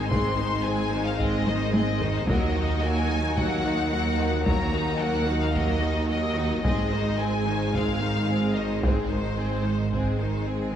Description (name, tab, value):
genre	cinematic, epic orchestral film score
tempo	110 BPM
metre	4/4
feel	straight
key	unclear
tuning	A4 = 440 Hz
part	rich symphonic violin section	melody	0.0-10.5 s	C5 to C6	-31 LUFS	left 3 dB	none
part	rich symphonic violin section	second line	0.0-10.7 s	C4 to C5	-33 LUFS	left 2 dB	none
part	rich symphonic viola section	accompaniment	0.0-10.8 s	Eb3 to C4	-31 LUFS	equal	none
part	mellow French horn section	sustained chords	0.0-10.7 s	Ab3 to Eb4	-32 LUFS	left 1 dB	none
part	dark symphonic cello section	bass	0.0-10.8 s	Eb2 to Ab2	-30 LUFS	right 3 dB	none
part	rich symphonic double bass section	bass	0.0-10.8 s	Ab1 to Eb2	-30 LUFS	right 2 dB	none
part	taiko ensemble	drums	0.1-10.4 s	none	-28 LUFS	equal	none
room	wet concert hall reverb, RT60 1.7 s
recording	none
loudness	-22 LUFS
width	side -9 dB against mid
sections	0.0-10.8 A section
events	drum fill 1.5-2.3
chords	0.0 Ab; 2.3 Ebm; 6.7 Ab